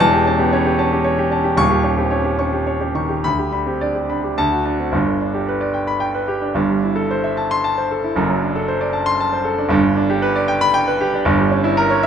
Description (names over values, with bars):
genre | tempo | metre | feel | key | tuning
classical, virtuoso piano study | 104-117 BPM | 3/4 | rubato | G major | A4 = 440 Hz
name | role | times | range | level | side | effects
warm grand piano | solo | 0.0-12.1 s | Eb1 to Db6 | -16 LUFS | equal | none
room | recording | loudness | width
light reverb | close, detailed microphones | -16 LUFS | side -8 dB against mid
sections
0.0-4.9 A section; 4.9-12.1 B section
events
none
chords
0.0 A7/E; 1.6 Eb7; 3.2 G/D; 4.4 D; 4.9 G; 6.6 Am7/G; 8.2 D7/F#; 9.7 G; 11.3 Gdim7